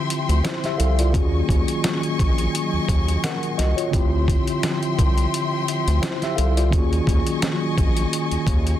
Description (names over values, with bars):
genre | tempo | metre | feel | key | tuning
hip hop, boom-bap hip-hop | 86 BPM | 4/4 | swing 54% on 16ths | unclear | A4 = 439 Hz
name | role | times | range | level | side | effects
mellow tine electric piano | accompaniment | 0.0-8.8 s | D3 to Gb5 | -24 LUFS | equal | medium stereo tremolo, plate reverb
warm studio string section | sustained chords | 0.0-8.8 s | F3 to Db6 | -28 LUFS | left 3 dB | none
boom bap sampler-style drum kit | drums | 0.1-8.8 s | hi-hat, kick drum, snare drum | -22 LUFS | equal | none
round analog bass | bass | 0.3-8.8 s | Bb1 to Eb2 | -21 LUFS | equal | none
room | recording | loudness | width
light reverb | dense, heavily limited modern master | -18 LUFS | side -12 dB against mid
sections
0.0-8.8 A section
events
none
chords
0.0 Dm11; 1.1 Ebm11; 3.9 Dm11; 6.7 Ebm11